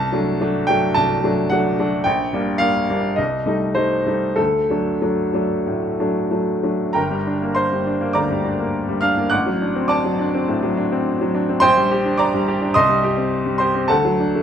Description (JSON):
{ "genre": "classical, romantic character piece for solo piano", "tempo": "91-111 BPM", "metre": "4/4", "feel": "rubato", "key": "G minor", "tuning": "A4 = 440 Hz", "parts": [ { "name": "bright upright piano", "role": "solo", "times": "0.0-14.4 s", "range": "G1 to F#6", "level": "-17 LUFS", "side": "equal", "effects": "none" } ], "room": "moderate stone room reverb, RT60 1.2 s", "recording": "none", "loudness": "-17 LUFS", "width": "side -8 dB against mid", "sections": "0.0-7.0 A section; 7.0-14.4 B section", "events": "none", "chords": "0.0 D7/C; 2.1 Gm/Bb; 3.2 Am7b5/C; 4.4 D; 7.0 Gm; 9.3 D7/A; 11.6 Gm/Bb; 12.8 Cm; 13.9 D" }